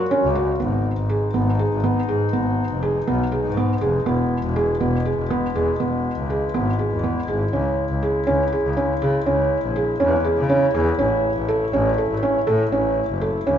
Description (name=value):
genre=contemporary instrumental, chamber music in an uneven meter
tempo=243 BPM (eighths)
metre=7/8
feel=straight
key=unclear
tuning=A4 = 439 Hz
part: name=dark woodwind section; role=sustained chords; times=0.0-13.6 s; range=A#2 to F#4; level=-27 LUFS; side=left 5 dB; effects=none
part: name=felt-muted upright piano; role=arpeggios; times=0.1-13.6 s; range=B3 to A4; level=-21 LUFS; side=right 1 dB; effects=none
part: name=bright double bass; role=bass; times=0.2-13.6 s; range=E1 to C#3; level=-23 LUFS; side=equal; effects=none
room=moderate recital hall reverb, RT60 1.5 s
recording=nothing above 7.5 kHz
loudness=-18 LUFS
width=side -9 dB against mid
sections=0.6-13.6 A section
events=none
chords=0.0 F#add9; 0.6 G#m; 4.1 E; 7.5 C#m; 11.0 A